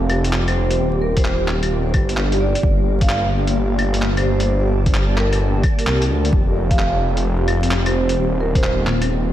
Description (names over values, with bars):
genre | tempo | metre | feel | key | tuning
future garage | 130 BPM | 4/4 | swing 66% on 16ths | G minor | A4 = 435 Hz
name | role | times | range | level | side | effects
granular cloud pad | sustained chords | 0.0-9.3 s | Bb3 to A5 | -24 LUFS | equal | built-in reverb, ensemble chorus, sidechain pumping
swelling detuned saw bass | bass | 0.0-9.3 s | Eb1 to D2 | -19 LUFS | equal | sidechain pumping
lo-fi sampler-style drum kit | drums | 0.1-9.1 s | claves, handclaps, hi-hat | -26 LUFS | left 1 dB | overdrive
vibraphone with medium mallets | melody | 0.5-8.8 s | Bb4 to F5 | -25 LUFS | right 2 dB | tape echo
electronic kick drum | drums | 1.2-8.6 s | none | -18 LUFS | equal | overdrive
room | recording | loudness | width
moderate lush hall reverb, RT60 1.8 s, digital ambience | dreamy mix soaked in reverb, vinyl crackle | -16 LUFS | side -12 dB against mid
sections
0.0-9.3 A section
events
none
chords
0.0 Fsus2; 0.8 Ebmaj7; 2.6 Gmadd9; 6.3 Fsus2; 8.2 Ebmaj7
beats
0.33 | 0.79 1.25 1.71 2.17 | 2.63 3.10 3.56 4.02 | 4.48 4.94 5.40 5.87 | 6.33 6.79 7.25 7.71 | 8.17 8.63 9.10